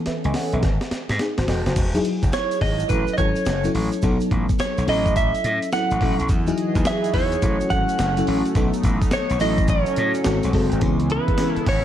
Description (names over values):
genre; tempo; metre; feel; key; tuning
R&B, new jack swing; 106 BPM; 4/4; swing 64% on 16ths; unclear; A4 = 438 Hz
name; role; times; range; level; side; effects
FM electric piano with soft pad layer; accompaniment; 0.0-11.8 s; E3 to G#5; -24 LUFS; left 2 dB; chorus
gritty slap bass; bass; 0.1-11.8 s; E1 to A2; -24 LUFS; equal; overdrive
breakbeat sampler-style drum kit; drums; 0.1-11.8 s; crash cymbal, hi-hat, kick drum, snare drum, tambourine; -24 LUFS; equal; none
egg shaker; percussion; 1.8-10.8 s; none; -43 LUFS; right 6 dB; none
direct-recorded clean electric guitar; melody; 2.3-11.8 s; B4 to F#5; -24 LUFS; right 2 dB; wide subtle chorus, digital delay
chorused pulse-width pad; sustained chords; 6.3-11.8 s; C#3 to D#5; -28 LUFS; equal; none
room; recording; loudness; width
moderate lush hall reverb, RT60 1.8 s, digital ambience; dark, warm production; -18 LUFS; side -11 dB against mid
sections
0.0-1.8 A section; 1.8-10.8 B section; 10.8-11.8 C section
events
drum fill 0.0-1.8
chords
0.0 B9sus4; 0.6 Emaj9; 2.9 A6; 4.0 B7; 4.9 A6; 6.3 Emaj9; 7.4 A6; 8.6 B7; 9.4 A6; 10.3 G#7b9; 10.8 C#m7